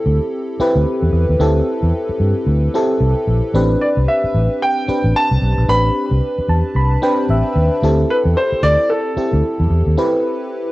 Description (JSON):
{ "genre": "R&B, new jack swing", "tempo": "112 BPM", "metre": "4/4", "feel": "swing 60% on 16ths", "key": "unclear", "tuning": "A4 = 441 Hz", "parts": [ { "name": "FM electric piano with soft pad layer", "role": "accompaniment", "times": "0.0-10.7 s", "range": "C4 to B5", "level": "-18 LUFS", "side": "equal", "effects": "chorus, cassette tape, plate reverb" }, { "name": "vintage muted fingered electric bass", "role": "bass", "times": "0.1-9.9 s", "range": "A1 to G2", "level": "-15 LUFS", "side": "equal", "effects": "none" }, { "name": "warm baby grand piano", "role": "melody", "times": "3.8-10.7 s", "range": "A4 to B5", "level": "-18 LUFS", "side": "equal", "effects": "plate reverb" } ], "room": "light reverb", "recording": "home recording on cassette", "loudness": "-14 LUFS", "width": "side -18 dB against mid", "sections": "0.0-10.7 A section", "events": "FM electric piano fill 6.2-7.8; break 10.0-10.7", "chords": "0.0 D9sus4; 3.5 Am11; 7.8 D9sus4" }